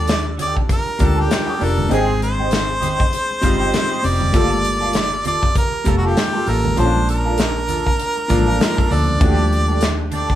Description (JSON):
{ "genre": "lush 1970s-style soul", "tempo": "99 BPM", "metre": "4/4", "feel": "swing 58% on 16ths", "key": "unclear", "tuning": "A4 = 440 Hz", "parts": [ { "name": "clear harmonica", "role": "melody", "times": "0.0-10.4 s", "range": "F#4 to D5", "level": "-21 LUFS", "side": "right 1 dB", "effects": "none" }, { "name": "bright baby grand piano", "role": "accompaniment", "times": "0.0-10.4 s", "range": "F3 to A5", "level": "-23 LUFS", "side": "left 1 dB", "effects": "none" }, { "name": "electric guitar through a small old amp", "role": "riff", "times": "0.0-10.3 s", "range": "Bb3 to C5", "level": "-26 LUFS", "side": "right 1 dB", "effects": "wah" }, { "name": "vintage muted fingered electric bass", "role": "bass", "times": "0.0-10.3 s", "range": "F1 to Eb2", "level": "-21 LUFS", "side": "equal", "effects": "none" }, { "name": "modern studio drum kit", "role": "drums", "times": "0.1-10.4 s", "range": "hi-hat, kick drum, snare drum", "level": "-20 LUFS", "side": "equal", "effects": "none" }, { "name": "congas", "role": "percussion", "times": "0.1-10.3 s", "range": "none", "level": "-28 LUFS", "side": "right 1 dB", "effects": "none" } ], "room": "moderate studio reverb, RT60 0.7 s", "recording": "band playing live in one room", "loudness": "-15 LUFS", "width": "side -12 dB against mid", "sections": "0.0-10.4 A section", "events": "none", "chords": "0.0 Ebmaj9#11; 1.9 Abmaj7; 4.3 Gm9; 6.8 Bbmaj7; 9.2 Ebmaj9#11" }